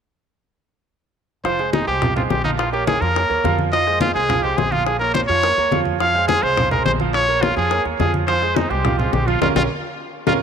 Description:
latin, salsa; 211 BPM; 4/4; straight; F minor; A4 = 441 Hz
bright trumpet; melody; 1.4-10.3 s; Eb4 to F5; -19 LUFS; left 1 dB
bright grand piano; accompaniment; 1.4-10.4 s; F3 to F5; -23 LUFS; right 12 dB
upright bass; bass; 1.4-10.4 s; F1 to F2; -25 LUFS; left 1 dB
bongos; percussion; 1.4-10.3 s; -26 LUFS; left 13 dB
congas; percussion; 1.4-10.3 s; -25 LUFS; left 1 dB
moderate plate reverb, RT60 3.2 s; 1960s-style stereo with parts hard left and right; -16 LUFS; side -7 dB against mid
1.4-10.4 A section
band accent 9.4-10.4; drum fill 10.0-10.4
1.4 Fm; 2.6 Bbm; 3.7 Fm7; 4.9 Bbm; 6.0 Fm; 7.1 Bbm; 8.3 Fm; 9.4 Bbm

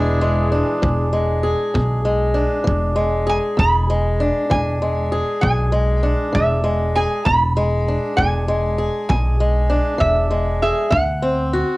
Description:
acoustic country blues, solo or duo; 66 BPM (dotted quarters); 12/8; straight; A4 = 440 Hz
fingerpicked swing-style acoustic guitar; accompaniment; 0.0-11.8 s; E2 to G#4; -20 LUFS; equal
upright bass; bass; 0.0-11.6 s; E1 to D2; -20 LUFS; equal
kick drum; drums; 0.8-11.1 s; -23 LUFS; equal; cassette tape
metal-body resonator slide guitar; melody; 3.3-11.8 s; E5 to B5; -20 LUFS; right 1 dB; cassette tape
light reverb; home recording on cassette; -16 LUFS; side -20 dB against mid
0.0-11.8 A section
0.0 E7; 10.9 D7

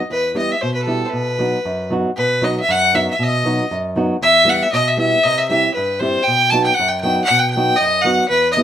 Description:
balkan folk; 116 BPM; 2/4; swing 55% on 16ths; A4 = 440 Hz
rich fiddle; melody; 0.1-8.6 s; A4 to A5; -15 LUFS; left 1 dB
nylon-string guitar; accompaniment; 0.1-8.6 s; E2 to G4; -20 LUFS; right 1 dB
wet studio reverb, RT60 0.5 s; rough home demo mix; -14 LUFS; side -10 dB against mid
0.0-2.2 A section; 2.2-8.6 A section
0.1 Em; 1.1 B; 4.2 Em; 5.3 C; 6.3 B

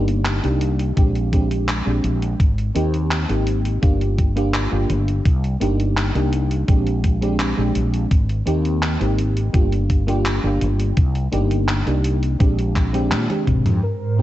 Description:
vaporwave; 84 BPM; 4/4; straight; C minor; A4 = 440 Hz
mellow FM electric piano; accompaniment; 0.0-14.2 s; Ab2 to G4; -23 LUFS; equal; analog chorus, vintage 12-bit sampler grit, analog delay
fretless electric bass; bass; 0.0-13.8 s; G1 to Bb2; -20 LUFS; equal; tube saturation, analog chorus
gated 80s digital drum machine; drums; 0.1-13.8 s; handclaps, hi-hat, toms; -26 LUFS; equal; gated reverb, vintage 12-bit sampler grit, small room ambience
electronic kick drum; drums; 1.0-13.6 s; -16 LUFS; equal; vintage 12-bit sampler grit, small room ambience
warm velvety synth lead; melody; 13.8-14.2 s; Bb4; -29 LUFS; left 1 dB; chorus
lush unison pad; sustained chords; 13.8-14.2 s; Ab2 to C5; -19 LUFS; right 2 dB; chorus
digital ambience; cassette tape, nothing above 8.0 kHz; -17 LUFS; side -14 dB against mid
0.0-13.8 A section
drum fill 13.1-13.8
0.0 Cm9; 1.0 Bb13; 2.4 Abmaj7; 3.8 Gm7; 5.3 Cm9; 6.7 Bb13; 8.1 Abmaj7; 9.5 Gm7; 11.0 Cm9; 12.4 Bb13

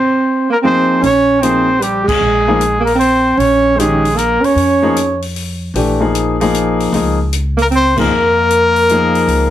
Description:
modal jazz; 153 BPM; 3/4; swing 66% on 8ths; Bb dorian; A4 = 440 Hz
breathy trumpet; melody; 0.0-5.2, 7.6-9.5 s; G4 to Db5; -13 LUFS; left 1 dB; plate reverb
breathy alto saxophone; second line; 0.0-5.2, 7.6-9.5 s; G3 to Db4; -15 LUFS; right 2 dB
clear baby grand piano; accompaniment; 0.6-9.5 s; Eb3 to Ab4; -15 LUFS; left 2 dB
upright bass; bass; 1.0-9.5 s; Ab1 to F2; -20 LUFS; equal
open jazz drum kit; drums; 1.0-9.4 s; crash cymbal, hi-hat, kick drum; -25 LUFS; left 3 dB
moderate small room reverb, RT60 0.5 s; heavily compressed radio sound, multiband compression; -11 LUFS; side -12 dB against mid
0.0-1.0 A section; 1.0-9.5 B section
break 0.0-1.0; band accent 2.0, 7.9
0.0 Bb7sus2; 1.0 Bbm9

